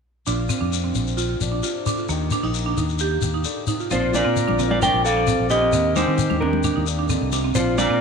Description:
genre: highlife guitar band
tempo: 132 BPM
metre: 4/4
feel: straight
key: Bb major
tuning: A4 = 440 Hz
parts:
  - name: fingerpicked swing-style acoustic guitar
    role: accompaniment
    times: 0.3-8.0 s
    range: F2 to G4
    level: -32 LUFS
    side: left 10 dB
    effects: none
  - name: buzzing marimba with medium hard mallets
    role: arpeggios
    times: 0.3-8.0 s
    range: Bb3 to G4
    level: -25 LUFS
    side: right 8 dB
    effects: slapback echo
  - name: fingered electric bass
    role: bass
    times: 0.3-8.0 s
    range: Bb1 to Eb3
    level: -25 LUFS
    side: equal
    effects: none
  - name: shekere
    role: percussion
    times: 0.3-7.9 s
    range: none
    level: -27 LUFS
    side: left 6 dB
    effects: none
  - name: electric guitar through a small old amp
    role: melody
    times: 3.9-8.0 s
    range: D4 to G5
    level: -21 LUFS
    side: equal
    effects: none
  - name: warm trumpet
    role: second line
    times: 3.9-8.0 s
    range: F4 to D5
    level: -29 LUFS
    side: left 8 dB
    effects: none
  - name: congas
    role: percussion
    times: 4.1-7.9 s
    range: none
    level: -29 LUFS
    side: left 10 dB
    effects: none
room: wet echo chamber reverb, RT60 1.6 s, small room ambience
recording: 1960s-style stereo with parts hard left and right, faint mains hum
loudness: -19 LUFS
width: side -6 dB against mid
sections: 0.3-3.9 A section; 3.9-8.0 B section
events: none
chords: 0.3 Bbadd9; 2.1 Eb; 3.9 Bbadd9; 5.7 Eb

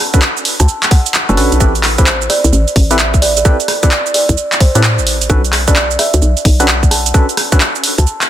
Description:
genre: UK garage, two-step garage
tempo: 130 BPM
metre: 4/4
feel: swing 64% on 16ths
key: unclear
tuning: A4 = 441 Hz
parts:
  - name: kalimba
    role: melody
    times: 0.0-8.1 s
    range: C5 to A5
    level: -19 LUFS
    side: right 1 dB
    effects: tape echo
  - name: percussive organ stab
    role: stabs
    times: 0.1-7.6 s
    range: C4 to B4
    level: -19 LUFS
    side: equal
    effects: chorus, tape echo
  - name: electronic kick drum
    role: drums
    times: 0.1-8.0 s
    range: none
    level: -10 LUFS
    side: equal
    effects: none
  - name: punchy analog drum machine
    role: drums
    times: 0.1-8.3 s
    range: handclaps, hi-hat, rim click, shaker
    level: -14 LUFS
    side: right 1 dB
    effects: none
  - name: hollow knocking FM bass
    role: bass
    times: 0.6-8.1 s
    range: F#1 to A2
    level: -14 LUFS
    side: equal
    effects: none
room: light reverb, digital ambience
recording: dense, heavily limited modern master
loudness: -9 LUFS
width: side -11 dB against mid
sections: 0.0-8.3 A section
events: none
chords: 0.0 Bm9; 1.6 Am9; 5.3 Bm9

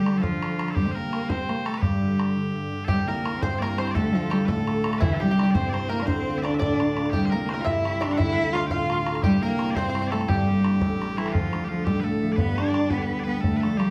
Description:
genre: celtic folk, Celtic jig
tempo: 114 BPM (dotted quarters)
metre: 6/8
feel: straight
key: unclear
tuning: A4 = 440 Hz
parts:
  - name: dark cello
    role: melody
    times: 0.0-13.9 s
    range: E3 to F4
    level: -27 LUFS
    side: equal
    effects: none
  - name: loud bright bagpipes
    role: second line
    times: 0.0-13.9 s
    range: E4 to G5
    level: -36 LUFS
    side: equal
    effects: none
  - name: concert harp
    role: accompaniment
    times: 0.0-13.9 s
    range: G1 to F4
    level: -31 LUFS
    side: equal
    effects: none
  - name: bodhran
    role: percussion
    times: 0.1-13.9 s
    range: none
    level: -31 LUFS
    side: equal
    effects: none
  - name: bluegrass banjo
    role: second line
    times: 2.9-11.0 s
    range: E4 to F5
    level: -35 LUFS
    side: equal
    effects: none
room: wet studio reverb, RT60 0.8 s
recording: heard from further back in the room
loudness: -24 LUFS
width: mono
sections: 0.0-2.9 A section; 2.9-11.3 A section; 11.3-13.9 B section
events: break 2.4-2.9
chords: 0.0 N.C.; 0.8 C5; 1.8 G5; 2.9 C; 4.0 Dm; 5.0 C; 6.1 Dm; 7.1 C; 8.2 Dm; 9.2 C; 10.3 Gm; 10.8 A7; 11.3 Dm; 12.4 G

